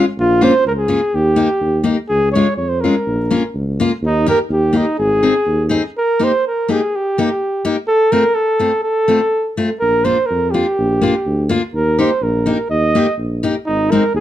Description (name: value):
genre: alpine folk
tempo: 125 BPM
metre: 2/4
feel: rubato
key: Ab major, Eb major from 6.0 s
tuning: A4 = 440 Hz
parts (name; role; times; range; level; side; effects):
- picked steel-string acoustic guitar; accompaniment; 0.0-14.0 s; Ab3 to Ab4; -16 LUFS; left 3 dB; none
- mellow flugelhorn; melody; 0.2-14.2 s; Eb4 to Eb5; -16 LUFS; right 1 dB; plate reverb
- mellow tuba; bass; 0.2-5.8, 9.8-14.2 s; Ab1 to F2; -19 LUFS; right 1 dB; none
room: moderate studio ambience, RT60 0.5 s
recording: dark, warm production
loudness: -13 LUFS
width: side -12 dB against mid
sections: 0.0-6.0 A section; 6.0-13.7 B section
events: none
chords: 0.2 Bbm; 1.1 Eb; 2.1 Db; 3.1 Bbm; 4.0 Eb; 5.0 Ab; 6.0 Eb; 7.9 F; 9.8 Bb6; 11.7 Eb; 13.7 Ab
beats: | 0.17 0.65 | 1.13 1.61 | 2.10 2.59 | 3.07 3.55 | 4.03 4.50 | 4.98 5.46 | 5.96 6.44 | 6.92 7.40 | 7.88 8.36 | 8.84 9.32 | 9.81 10.30 | 10.78 11.26 | 11.74 12.22 | 12.70 13.18 | 13.67 14.15